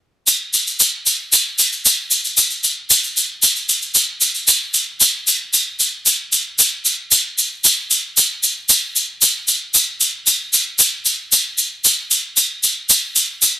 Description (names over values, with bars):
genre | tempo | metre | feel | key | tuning
folk | 114 BPM | 4/4 | straight | none | none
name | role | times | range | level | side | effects
egg shaker | percussion | 0.3-13.5 s | none | -13 LUFS | equal | none
room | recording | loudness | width
light reverb, studio reverb | home recording on cassette | -13 LUFS | side -15 dB against mid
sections
0.0-4.5 A section; 4.5-13.6 B section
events
none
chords
none